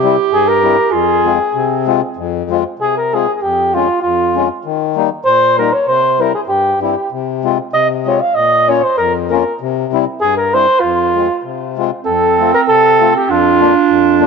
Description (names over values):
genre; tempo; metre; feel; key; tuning
alpine folk, alpine dance band; 98 BPM; 2/4; swing 54% on 8ths, rubato; F minor; A4 = 440 Hz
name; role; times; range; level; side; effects
warm clarinet; second line; 0.0-2.1, 12.0-14.3 s; C4 to G4; -15 LUFS; right 16 dB; none
mellow accordion; accompaniment; 0.0-14.3 s; F2 to F4; -17 LUFS; left 11 dB; none
mellow flugelhorn; melody; 0.3-14.2 s; F4 to F5; -13 LUFS; right 1 dB; tape echo
room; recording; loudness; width
moderate spring reverb, RT60 1.7 s, small room ambience; 1960s-style stereo with parts hard left and right, nothing above 7.9 kHz; -11 LUFS; side -5 dB against mid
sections
0.0-2.2 A section; 2.2-12.1 A section; 12.1-14.3 B section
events
none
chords
0.0 C; 0.9 Fm; 3.4 Db/F; 4.6 Eb; 5.9 C; 7.1 Fm/C; 8.4 Bbm; 9.6 C; 10.8 Fm; 12.1 F; 13.3 Bb/F